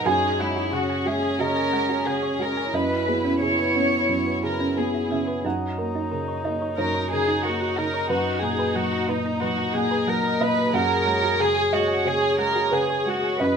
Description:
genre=neoclassical piano and strings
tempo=90 BPM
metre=4/4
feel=rubato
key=F# mixolydian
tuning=A4 = 439 Hz
part: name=warm chamber violin section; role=melody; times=0.0-13.6 s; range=D#4 to C#5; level=-24 LUFS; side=left 1 dB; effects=none
part: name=dark viola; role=accompaniment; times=0.0-13.6 s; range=C#4 to B4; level=-30 LUFS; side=right 2 dB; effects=none
part: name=felt-muted upright piano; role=accompaniment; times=0.0-13.6 s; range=F#2 to G#5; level=-27 LUFS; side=equal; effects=none
part: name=pedal harmonium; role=sustained chords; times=0.0-13.6 s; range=B3 to A#5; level=-33 LUFS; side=equal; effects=none
part: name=thumb-piano-like synth pluck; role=arpeggios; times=0.1-13.5 s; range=C#4 to A#5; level=-30 LUFS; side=right 4 dB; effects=chorus
room=moderate large studio reverb, RT60 0.8 s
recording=minimal, uncompressed stereo recording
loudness=-21 LUFS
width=side -6 dB against mid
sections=0.0-13.6 A section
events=none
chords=0.1 F#sus2; 2.7 C#m7/F#; 5.4 D#m7/F#; 8.1 Bmaj7/F#; 10.7 F#sus2

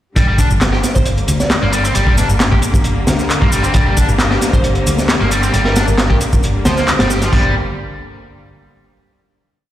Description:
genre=breakbeat, breaks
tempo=134 BPM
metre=4/4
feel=straight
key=G minor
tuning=A4 = 440 Hz
part: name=clear studio string section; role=sustained chords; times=0.2-7.5 s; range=D3 to Bb3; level=-22 LUFS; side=left 1 dB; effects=vintage 12-bit sampler grit, sidechain pumping
part: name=overdriven electric guitar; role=riff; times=0.2-7.5 s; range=F3 to G4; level=-20 LUFS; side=equal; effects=digital delay
part: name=hollow-body short-scale fingered electric bass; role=bass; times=0.2-7.5 s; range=G1 to D2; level=-16 LUFS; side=equal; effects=none
part: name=crunchy breakbeat drum kit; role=drums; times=0.2-7.4 s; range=crash cymbal, hi-hat, kick drum, snare drum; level=-16 LUFS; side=equal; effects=none
part: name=electronic shaker and handclaps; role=drums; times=0.2-7.3 s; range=none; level=-22 LUFS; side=equal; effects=overdrive
part: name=glassy wavetable pluck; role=melody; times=0.9-1.7, 4.5-6.8 s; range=Bb4 to D5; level=-25 LUFS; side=right 1 dB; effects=chorus, old record sound, vintage 12-bit sampler grit, digital delay
room=light reverb, small room ambience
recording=played on a big sound system in a bare room, large studio reverb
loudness=-12 LUFS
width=side -13 dB against mid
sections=0.2-7.3 drop; 7.3-9.1 final chord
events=drop 0.2-7.3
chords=0.2 Gm

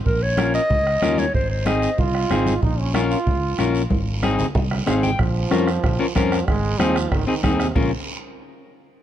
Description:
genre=latin, cumbia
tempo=187 BPM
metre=4/4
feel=straight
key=Bb minor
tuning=A4 = 440 Hz
part: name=warm clarinet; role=melody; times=0.1-2.0 s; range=Bb4 to Eb5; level=-23 LUFS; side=equal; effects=analog delay
part: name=fingered electric bass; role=bass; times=0.1-7.9 s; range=Ab1 to F2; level=-24 LUFS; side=equal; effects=none
part: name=bombo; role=percussion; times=0.1-7.8 s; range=none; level=-24 LUFS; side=right 2 dB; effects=none
part: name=congas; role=percussion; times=0.1-7.8 s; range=none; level=-28 LUFS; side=left 1 dB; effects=none
part: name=guiro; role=percussion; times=0.1-7.8 s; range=none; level=-36 LUFS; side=right 5 dB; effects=none
part: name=clean electric guitar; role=accompaniment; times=0.4-7.9 s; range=C4 to G5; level=-23 LUFS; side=left 3 dB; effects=none
part: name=clear trombone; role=second line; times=2.0-7.9 s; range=C3 to F4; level=-27 LUFS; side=right 5 dB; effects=none
room=light reverb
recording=dark, warm production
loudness=-18 LUFS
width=side -11 dB against mid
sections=0.0-5.2 A section; 5.2-7.8 B section; 7.8-9.0 C section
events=drum fill 3.9-5.2; clean electric guitar fill 4.7-5.2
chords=0.1 Bbm; 1.3 Ab; 2.6 Bbm; 3.9 Ab; 5.2 Bbm; 6.5 Ab; 7.8 Bbm

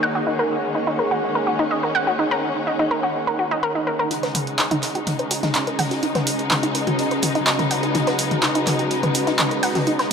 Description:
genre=melodic techno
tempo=125 BPM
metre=4/4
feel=straight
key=unclear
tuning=A4 = 439 Hz
part: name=warm studio string section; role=sustained chords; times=0.0-10.1 s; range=Db3 to Eb4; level=-25 LUFS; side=left 2 dB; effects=none
part: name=analog pluck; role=arpeggios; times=0.0-10.0 s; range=Eb4 to Gb5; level=-23 LUFS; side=equal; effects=chorus, dub echo
part: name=granular cloud pad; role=texture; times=0.0-10.1 s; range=Db4 to Gb5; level=-25 LUFS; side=right 1 dB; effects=built-in reverb
part: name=loose indie drum kit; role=drums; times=4.1-10.1 s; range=hi-hat, snare drum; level=-34 LUFS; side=left 2 dB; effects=none
part: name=punchy analog drum machine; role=drums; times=4.1-10.1 s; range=handclaps, hi-hat, toms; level=-22 LUFS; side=equal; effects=none
room=moderate lush hall reverb, RT60 1.8 s, small room ambience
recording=none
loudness=-18 LUFS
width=side -6 dB against mid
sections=0.0-4.1 A section; 4.1-10.1 B section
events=build-up 4.1-10.1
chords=0.0 Ebm; 4.1 Db5

